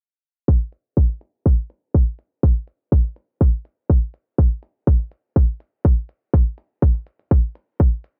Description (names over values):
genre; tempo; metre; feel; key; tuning
minimal techno; 123 BPM; 4/4; straight; none; none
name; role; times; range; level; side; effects
electronic kick drum; drums; 0.5-7.9 s; none; -17 LUFS; equal; none
electronic hi-hat; drums; 0.7-8.1 s; none; -62 LUFS; equal; none
room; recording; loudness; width
little or no reverb; low-pass filter, nothing above 10.3 kHz; -21 LUFS; mono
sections
0.5-8.2 A section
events
filter sweep 0.5-8.2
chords
none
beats
| 0.48 0.97 1.46 1.95 | 2.43 2.92 3.41 3.90 | 4.38 4.87 5.36 5.85 | 6.33 6.82 7.31 7.80